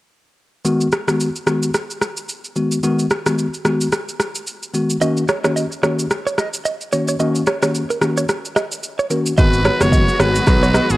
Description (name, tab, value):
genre	afrobeats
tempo	110 BPM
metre	4/4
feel	swing 58% on 16ths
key	G# minor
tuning	A4 = 443 Hz
part	bell-like tine electric piano	accompaniment	0.6-10.4 s	D#3 to F#4	-19 LUFS	left 1 dB	cassette tape
part	afro-pop drum kit	drums	0.7-11.0 s	kick drum, rim click, shaker	-19 LUFS	equal	none
part	direct-recorded clean electric guitar	riff	5.0-10.8 s	A#4 to D#5	-22 LUFS	right 4 dB	cassette tape
part	growling trumpet	melody	9.4-11.0 s	G#4 to C#5	-19 LUFS	equal	none
part	rich studio string section	sustained chords	9.4-11.0 s	D#3 to F#4	-21 LUFS	equal	cassette tape
part	modern bright fingered electric bass	bass	9.4-11.0 s	F#1 to B1	-18 LUFS	equal	none
room	light reverb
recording	home recording on cassette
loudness	-16 LUFS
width	side -18 dB against mid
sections	0.7-9.4 A section; 9.4-11.0 B section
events	none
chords	0.7 G#m7; 5.0 D#m7; 9.4 G#m7